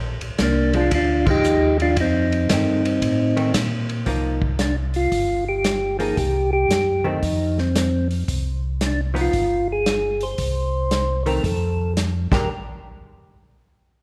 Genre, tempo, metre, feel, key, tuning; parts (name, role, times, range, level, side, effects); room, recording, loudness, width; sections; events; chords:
soul jazz organ trio; 114 BPM; 4/4; swing 67% on 8ths; A4 = 440 Hz
mellow tonewheel organ; bass; 0.0-12.5 s; G1 to Bb2; -26 LUFS; equal; slow rotary speaker
warm soul drum kit; drums; 0.2-12.4 s; crash cymbal, hi-hat, kick drum, ride cymbal, snare drum; -28 LUFS; equal
percussive tonewheel organ; melody; 0.4-12.5 s; Bb3 to C5; -24 LUFS; equal; slow rotary speaker
hollow-body jazz guitar; accompaniment; 0.7-12.5 s; Eb3 to G4; -31 LUFS; equal
moderate scoring stage reverb, RT60 1.7 s; recorded in a church or concert hall; -21 LUFS; mono
0.0-4.1 A section; 4.1-12.5 B section; 12.5-14.0 C section
band accent 1.2
0.0 Bb7; 2.0 F7; 4.1 Cm7; 5.1 Gm7; 6.2 Cm; 7.2 F5; 8.3 Cmadd11; 9.3 Fmadd9/G; 10.4 Cm; 11.4 F; 12.2 Bb6; 12.5 N.C.